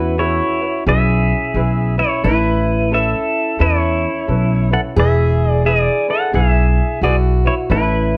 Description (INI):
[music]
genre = Hawaiian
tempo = 88 BPM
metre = 4/4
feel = swing 63% on 8ths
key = unclear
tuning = A4 = 441 Hz
[part]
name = pedal steel guitar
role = melody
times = 0.0-8.2 s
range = E4 to F#5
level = -21 LUFS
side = equal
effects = plate reverb
[part]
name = fingerpicked plugged-in steel-string acoustic guitar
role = second line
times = 0.0-8.2 s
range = E4 to G#4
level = -26 LUFS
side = equal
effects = none
[part]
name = ukulele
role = accompaniment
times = 0.0-8.2 s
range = C#4 to B4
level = -27 LUFS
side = equal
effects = none
[part]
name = upright bass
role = bass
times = 0.0-8.2 s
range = E1 to E2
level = -19 LUFS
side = equal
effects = none
[sound]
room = light reverb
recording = worn, warbling old tape, cassette tape, warbly pitch drift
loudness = -16 LUFS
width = mono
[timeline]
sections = 0.0-8.2 A section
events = none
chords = 0.0 E6; 2.2 Aadd9; 5.0 E7